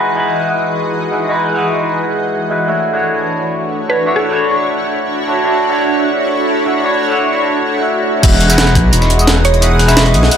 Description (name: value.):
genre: liquid drum and bass.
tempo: 173 BPM.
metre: 4/4.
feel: straight.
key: unclear.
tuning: A4 = 440 Hz.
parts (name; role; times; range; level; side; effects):
barky tine electric piano; accompaniment; 0.0-10.4 s; G#3 to E5; -15 LUFS; equal; overdrive, phaser, low-pass filter, digital delay.
shimmering ambient pad; sustained chords; 0.0-10.4 s; E3 to D#6; -18 LUFS; right 1 dB; chorus, built-in reverb.
mallet-like synth pluck; melody; 3.9-4.5, 9.4-10.0 s; A4 to E5; -18 LUFS; right 2 dB; chorus, ping-pong delay.
dark detuned saw bass; bass; 8.2-10.3 s; E1 to B1; -11 LUFS; equal; none.
dusty soul sampler-style drum kit; drums; 8.2-10.4 s; hi-hat, snare drum; -22 LUFS; left 1 dB; high-pass filter on hats, high-pass filter on snare.
electronic kick drum; drums; 8.2-8.8 s; none; -12 LUFS; equal; none.
jungle sampler-style drum kit; drums; 8.2-10.4 s; crash cymbal, hi-hat, rim click, snare drum, tambourine; -15 LUFS; equal; none.
room: light reverb, digital ambience.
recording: none.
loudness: -11 LUFS.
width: side -8 dB against mid.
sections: 0.0-8.2 A section; 8.2-10.4 B section.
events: filter sweep on ambient pad 0.0-8.2; drop 8.2-10.4.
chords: 0.0 Emaj9; 2.7 Dmaj9; 8.2 Emaj9.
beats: 0.26 0.60 0.95 | 1.30 1.64 1.99 2.34 | 2.68 3.03 3.38 3.72 | 4.07 4.42 4.76 5.11 | 5.46 5.80 6.15 6.50 | 6.84 7.19 7.54 7.89 | 8.23 8.58 8.93 9.27 | 9.62 9.97 10.31.